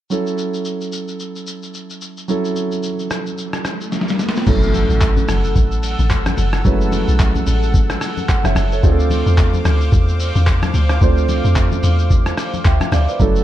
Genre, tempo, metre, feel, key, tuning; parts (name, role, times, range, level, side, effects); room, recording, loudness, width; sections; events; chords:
amapiano; 110 BPM; 4/4; swing 58% on 16ths; F# minor; A4 = 440 Hz
dark baby grand piano; accompaniment; 0.1-13.4 s; F#3 to G5; -22 LUFS; right 3 dB
lo-fi sampler-style drum kit; drums; 0.1-13.4 s; crash cymbal, handclaps, hi-hat, kick drum, rim click, shaker, snare drum; -19 LUFS; equal
riser and impact; sound effects; 3.3-6.7 s; -25 LUFS; equal
warm analog pad; sustained chords; 4.5-13.4 s; A4 to E6; -27 LUFS; left 2 dB; chorus, tremolo, sidechain pumping
deep log drum bass; bass; 4.5-13.4 s; F#1 to F2; -16 LUFS; equal
congas; percussion; 4.7-13.1 s; -25 LUFS; left 3 dB
little or no reverb; dark, warm production; -14 LUFS; side -13 dB against mid
0.1-4.5 A section; 4.5-13.4 B section
riser 3.3-4.5; drum fill 3.9-4.5; drop 4.5-13.4; impact 4.5-6.7
0.1 F#m7; 8.8 Dm7